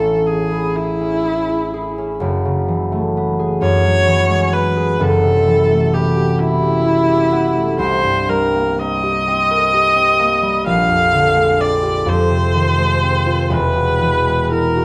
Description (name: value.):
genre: classical, impressionist duo for viola and harp.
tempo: 42 BPM (dotted quarters).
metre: 6/8.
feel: uneven beats, rubato.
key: unclear.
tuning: A4 = 440 Hz.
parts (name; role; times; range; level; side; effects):
clear viola; melody; 0.0-14.8 s; E4 to F5; -18 LUFS; equal; none.
concert harp; accompaniment; 0.0-14.8 s; E1 to Bb4; -19 LUFS; equal; none.
room: moderate recital hall reverb, RT60 1.5 s.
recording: close, detailed microphones.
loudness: -16 LUFS.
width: mono.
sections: 0.0-14.8 A section.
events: none.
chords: 0.0 Amaj7; 2.2 F#m11; 3.6 Eadd9/F#; 5.0 Am9/F#; 7.8 Cm7; 10.7 Bb13; 12.1 Fm7; 13.5 E.